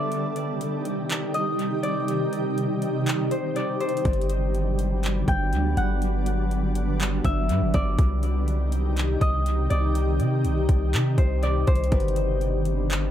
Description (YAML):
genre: hip hop, atmospheric cloud-rap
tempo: 122 BPM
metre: 4/4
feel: half-time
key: unclear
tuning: A4 = 440 Hz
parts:
  - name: concert harp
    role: melody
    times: 0.0-13.1 s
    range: C5 to G5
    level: -30 LUFS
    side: left 2 dB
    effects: tape echo
  - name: shimmering ambient pad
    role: sustained chords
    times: 0.0-13.1 s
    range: C3 to G4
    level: -27 LUFS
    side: equal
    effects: chorus, built-in reverb, sidechain pumping
  - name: trap drum kit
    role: drums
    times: 0.1-13.0 s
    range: handclaps, hi-hat, kick drum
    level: -26 LUFS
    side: equal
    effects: none
  - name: long sustained 808-style bass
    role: bass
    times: 4.1-13.1 s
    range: G1 to C3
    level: -24 LUFS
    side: equal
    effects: none
  - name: nylon-string guitar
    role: texture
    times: 11.9-13.1 s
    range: F#3 to B4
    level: -39 LUFS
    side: equal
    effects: none
room: little or no reverb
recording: echo-heavy mix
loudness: -22 LUFS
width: side -10 dB against mid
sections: 0.0-13.1 A section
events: break 0.0-4.0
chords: 0.1 Cm; 4.0 Gmaj7; 8.0 Cm; 11.9 Gmaj7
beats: | 0.12 0.61 1.10 1.59 | 2.08 2.58 3.07 3.56 | 4.05 4.54 5.03 5.53 | 6.02 6.51 7.00 7.49 | 7.99 8.48 8.97 9.46 | 9.95 10.44 10.94 11.43 | 11.92 12.41 12.90